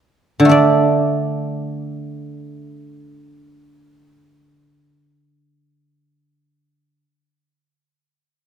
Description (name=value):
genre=chinese traditional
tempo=free time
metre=none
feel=none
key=unclear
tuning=A4 = 440 Hz
part: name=guzheng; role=solo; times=0.4-7.0 s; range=D3 to D5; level=-15 LUFS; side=right 1 dB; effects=none
room=moderate concert hall reverb, RT60 1.8 s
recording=dark, warm production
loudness=-14 LUFS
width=side -9 dB against mid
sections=0.5-7.4 A section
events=none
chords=none